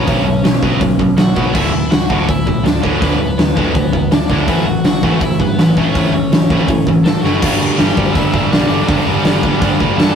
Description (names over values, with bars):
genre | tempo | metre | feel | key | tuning
punk rock | 164 BPM | 4/4 | straight | unclear | A4 = 440 Hz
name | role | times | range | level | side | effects
cranked stack guitar | melody | 0.0-10.2 s | B3 to A5 | -22 LUFS | right 1 dB | overdrive
distorted electric guitar | riff | 0.0-10.2 s | D2 to B3 | -16 LUFS | equal | overdrive
picked electric bass | bass | 0.1-10.1 s | D1 to A2 | -20 LUFS | equal | none
big rock drum kit | drums | 0.1-10.1 s | crash cymbal, hi-hat, kick drum, snare drum | -15 LUFS | equal | none
room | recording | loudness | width
light reverb | rough rehearsal-room recording | -11 LUFS | side -7 dB against mid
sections
0.0-7.4 A section; 7.4-10.2 B section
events
drum fill 7.2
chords
0.0 B5; 1.5 D; 4.5 A; 7.4 G5